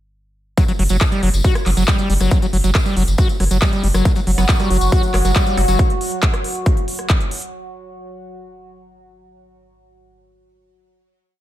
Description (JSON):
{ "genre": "psychedelic trance", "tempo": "138 BPM", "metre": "4/4", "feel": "straight", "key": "unclear", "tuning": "A4 = 439 Hz", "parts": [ { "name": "screaming distorted acid line", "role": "riff", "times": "0.6-5.8 s", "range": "F#3 to F#4", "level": "-22 LUFS", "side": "equal", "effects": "distortion, chorus, auto-pan, sidechain pumping, dub echo" }, { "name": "big-room dance drum kit", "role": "drums", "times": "0.6-7.5 s", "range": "handclaps, hi-hat, rim click", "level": "-24 LUFS", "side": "equal", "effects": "none" }, { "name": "electronic kick drum", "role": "drums", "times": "0.6-7.2 s", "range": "none", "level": "-16 LUFS", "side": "equal", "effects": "none" }, { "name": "tambourine", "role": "percussion", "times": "0.6-5.8 s", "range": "none", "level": "-31 LUFS", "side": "left 4 dB", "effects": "none" }, { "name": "round analog bass", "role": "bass", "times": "0.8-5.8 s", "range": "F#1", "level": "-17 LUFS", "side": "equal", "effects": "none" }, { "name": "overtone-sweeping drone", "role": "sustained chords", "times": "4.3-5.8 s", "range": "F#3 to F#4", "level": "-24 LUFS", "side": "equal", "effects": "chorus, built-in reverb, phaser, vintage 12-bit sampler grit, sidechain pumping" }, { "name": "metallic wobble bass", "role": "second line", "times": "4.4-5.8 s", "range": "F#3 to B3", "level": "-30 LUFS", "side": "right 1 dB", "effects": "distortion, wide subtle chorus, sidechain pumping, high-pass filter, ping-pong delay" } ], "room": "little or no reverb", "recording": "faint mains hum", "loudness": "-14 LUFS", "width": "side -14 dB against mid", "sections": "0.6-7.5 drop", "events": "drop 0.6-7.5", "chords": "none", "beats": "| 0.57 1.01 1.44 1.88 | 2.31 2.75 3.18 3.62 | 4.05 4.49 4.92 5.36 | 5.79 6.23 6.66 7.10" }